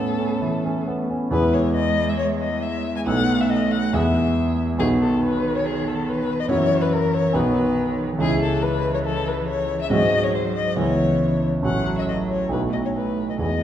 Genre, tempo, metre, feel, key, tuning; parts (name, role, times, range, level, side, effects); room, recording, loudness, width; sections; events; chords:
quick classical-period movement for piano trio; 139 BPM; 4/4; straight; E major; A4 = 439 Hz
warm violin; melody; 0.0-13.6 s; G#4 to G#5; -24 LUFS; left 4 dB
rich cello; second line; 0.0-13.6 s; D#3 to A3; -26 LUFS; right 3 dB
warm concert grand piano; accompaniment; 0.0-13.6 s; A1 to A4; -22 LUFS; equal
wet recital hall reverb, RT60 1.8 s; heard from further back in the room; -19 LUFS; side -10 dB against mid
0.0-1.3 A section; 1.3-13.6 B section
0.0 A; 1.3 E; 3.1 B7; 3.9 E; 4.8 B; 6.5 F#7; 7.3 B; 8.2 C#m; 9.9 G#7; 10.8 C#m7; 11.6 F#m/A; 12.5 B7